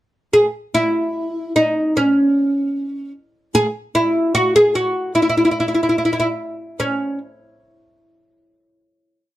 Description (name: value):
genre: fado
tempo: 75 BPM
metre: 2/4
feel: rubato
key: C# minor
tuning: A4 = 442 Hz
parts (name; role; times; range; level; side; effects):
- oud; solo; 0.3-7.2 s; C#4 to G#4; -15 LUFS; equal; none
room: light reverb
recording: dark, warm production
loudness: -16 LUFS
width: side -14 dB against mid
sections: 0.3-6.8 A section; 6.8-8.4 final note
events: none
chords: none